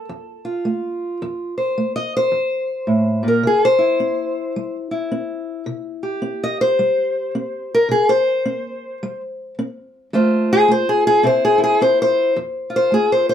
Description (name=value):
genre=acoustic country blues, solo or duo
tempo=108 BPM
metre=4/4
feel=swing 62% on 8ths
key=F major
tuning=A4 = 440 Hz
part: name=fingerpicked steel-string acoustic guitar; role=solo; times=0.0-13.3 s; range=F2 to Eb5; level=-16 LUFS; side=left 1 dB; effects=none
room=wet studio reverb, RT60 0.5 s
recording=dark, warm production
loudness=-16 LUFS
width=side -9 dB against mid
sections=0.0-12.4 A section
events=steel-string acoustic guitar solo 0.0-13.3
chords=0.0 F; 3.4 C; 10.1 F; 11.2 C; 12.4 F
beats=0.09 0.65 | 1.21 1.77 2.33 2.89 | 3.45 4.01 4.56 5.12 | 5.68 6.24 6.79 7.35 | 7.91 8.46 9.02 9.58 | 10.13 10.69 11.25 11.80 | 12.36 12.92